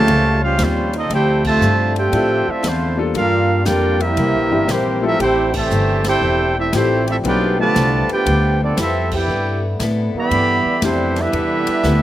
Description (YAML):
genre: jazz, big band swing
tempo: 117 BPM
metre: 4/4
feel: swing 67% on 8ths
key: C major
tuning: A4 = 440 Hz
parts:
  - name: clear trumpet section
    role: melody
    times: 0.0-12.0 s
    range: G3 to B5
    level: -20 LUFS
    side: right 1 dB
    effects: none
  - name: warm trombone section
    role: second line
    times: 0.0-12.0 s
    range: C3 to G4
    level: -20 LUFS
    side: right 3 dB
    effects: none
  - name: clear baby grand piano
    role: accompaniment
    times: 0.0-11.1 s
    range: E3 to A4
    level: -23 LUFS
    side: left 5 dB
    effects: none
  - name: muted trombone section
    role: sustained chords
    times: 0.0-12.0 s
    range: C#3 to A4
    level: -27 LUFS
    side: left 3 dB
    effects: none
  - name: upright bass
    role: bass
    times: 0.0-12.0 s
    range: E1 to A2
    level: -20 LUFS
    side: equal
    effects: none
  - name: picked steel-string acoustic guitar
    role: accompaniment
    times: 0.1-12.0 s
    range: A2 to A4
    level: -27 LUFS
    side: left 6 dB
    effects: slapback echo
  - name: swinging big-band drum kit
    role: drums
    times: 0.1-12.0 s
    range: crash cymbal, hi-hat, kick drum, ride cymbal, snare drum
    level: -28 LUFS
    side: equal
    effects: none
room: little or no reverb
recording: recorded outdoors, with no room sound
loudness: -14 LUFS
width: side -13 dB against mid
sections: 0.0-12.0 A section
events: band accent 1.4, 5.4, 9.0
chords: 0.1 A7alt; 1.1 Dm9; 3.1 Gm9; 4.2 C7; 5.2 Fmaj9; 7.2 G9; 9.3 Cmaj13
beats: 0.07 0.59 | 1.10 1.61 2.12 2.63 | 3.15 3.66 4.17 4.68 | 5.19 5.70 6.22 6.73 | 7.24 7.75 8.26 8.77 | 9.29 9.80 10.31 10.82 | 11.33 11.84